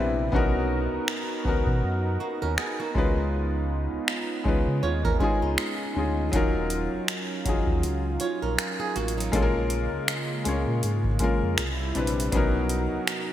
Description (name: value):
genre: contemporary R&B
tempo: 80 BPM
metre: 4/4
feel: swing 58% on 16ths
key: Eb minor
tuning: A4 = 442 Hz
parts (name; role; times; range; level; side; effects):
- felt-muted upright piano; accompaniment; 0.0-13.3 s; Gb3 to Gb5; -28 LUFS; left 3 dB; none
- warm analog pad; sustained chords; 0.0-13.3 s; C3 to A#4; -33 LUFS; right 2 dB; wide subtle chorus
- sub bass with octave; bass; 0.0-13.0 s; Eb1 to Db3; -28 LUFS; equal; none
- booming analog drum machine; drums; 0.3-13.3 s; finger snaps, hi-hat, kick drum; -27 LUFS; equal; gated reverb
- flamenco guitar; arpeggios; 2.2-9.5 s; Gb3 to Db5; -32 LUFS; right 6 dB; digital delay
room: moderate lush hall reverb, RT60 3.0 s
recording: bright 1980s-style digital production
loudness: -23 LUFS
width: side -12 dB against mid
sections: 0.0-13.3 A section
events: break 0.0-6.3; felt piano fill 0.0-0.3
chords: 0.3 Bmaj7; 3.0 Db9; 6.3 Ebm9; 9.3 Bbm7; 11.6 Cmaj7; 12.3 Bmaj7